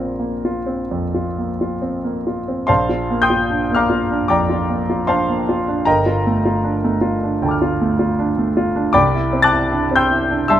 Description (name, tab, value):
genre	classical, impressionist solo piano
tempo	64-79 BPM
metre	4/4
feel	rubato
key	Bb major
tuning	A4 = 440 Hz
part	clear concert grand piano	solo	0.0-10.6 s	G1 to A6	-16 LUFS	equal	none
room	little or no reverb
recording	close, detailed microphones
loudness	-16 LUFS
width	side -11 dB against mid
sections	0.0-2.7 A section; 2.7-10.6 A section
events	none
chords	0.0 Bbsus2; 2.7 Bbadd9; 5.9 Gm9; 9.0 Cadd9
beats	0.89 1.81 | 2.68 3.51 4.30 5.09 | 5.87 6.65 7.42 8.19 | 8.95 9.72 10.50